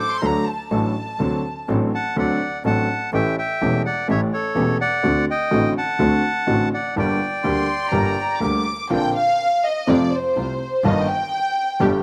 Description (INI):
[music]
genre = tango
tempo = 124 BPM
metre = 4/4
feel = rubato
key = G harmonic minor, Bb major from 8.9 s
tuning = A4 = 438 Hz
[part]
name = bandoneon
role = melody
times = 0.0-8.4 s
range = A4 to A5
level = -25 LUFS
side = equal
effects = slapback echo
[part]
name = warm studio violin section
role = second line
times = 0.0-1.6, 7.4-12.0 s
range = C5 to D6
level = -25 LUFS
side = equal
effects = slapback echo
[part]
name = warm concert grand piano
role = accompaniment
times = 0.2-12.0 s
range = E1 to A4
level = -24 LUFS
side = equal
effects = none
[part]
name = bright double bass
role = bass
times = 0.2-12.0 s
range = E1 to F2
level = -28 LUFS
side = equal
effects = none
[part]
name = dark studio string section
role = stabs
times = 8.9-12.0 s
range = G3 to G4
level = -30 LUFS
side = equal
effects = none
[sound]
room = little or no reverb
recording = recorded outdoors, with no room sound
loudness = -21 LUFS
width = mono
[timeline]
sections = 0.0-8.9 A section; 8.9-12.0 B section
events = violin section solo 8.9-12.0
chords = 0.0 D; 1.2 D7; 3.1 A7; 5.0 D7; 7.0 Gm; 8.9 Bbadd9; 9.9 F; 10.8 Ebadd9/G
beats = 0.23 0.71 | 1.20 1.69 2.17 2.65 | 3.13 3.61 4.09 4.56 | 5.04 5.52 6.00 6.48 | 6.96 7.45 7.93 8.42 | 8.91 9.39 9.88 10.36 | 10.84 11.32 11.80